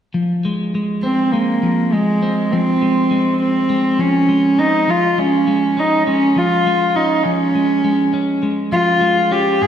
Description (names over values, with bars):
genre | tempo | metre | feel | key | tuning
rock | 101 BPM | 4/4 | straight | F minor | A4 = 441 Hz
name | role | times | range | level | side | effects
clean electric guitar | arpeggios | 0.1-9.7 s | Ab2 to Db4 | -19 LUFS | equal | slapback echo
dark cello | melody | 1.0-9.7 s | Ab3 to Ab4 | -15 LUFS | equal | slapback echo
room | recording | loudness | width
wet lush hall reverb, RT60 2.1 s | big arena sound | -14 LUFS | side -9 dB against mid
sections
0.1-9.7 A section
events
none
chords
0.1 Fm; 4.9 Db/F